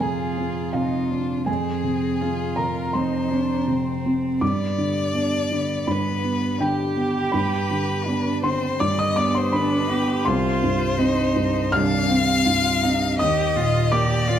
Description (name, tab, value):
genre	neoclassical piano and strings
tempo	82 BPM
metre	4/4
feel	rubato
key	unclear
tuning	A4 = 439 Hz
part	rich violin	melody	0.0-14.4 s	F4 to F5	-26 LUFS	left 5 dB	none
part	warm cello	second line	0.0-14.4 s	B3 to G4	-29 LUFS	right 4 dB	none
part	felt-muted upright piano	accompaniment	0.0-14.4 s	C2 to F6	-21 LUFS	right 1 dB	none
room	moderate large studio reverb, RT60 1.3 s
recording	band playing live in one room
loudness	-20 LUFS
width	side -9 dB against mid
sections	0.0-14.4 A section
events	none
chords	0.0 Fm; 4.4 G; 10.3 Cm; 13.2 Eb5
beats	0.00 0.74 | 1.48 2.21 2.95 3.68 | 4.42 5.15 5.88 6.61 | 7.34 8.07 8.81 9.54 | 10.27 11.00 11.74 12.47 | 13.20 13.92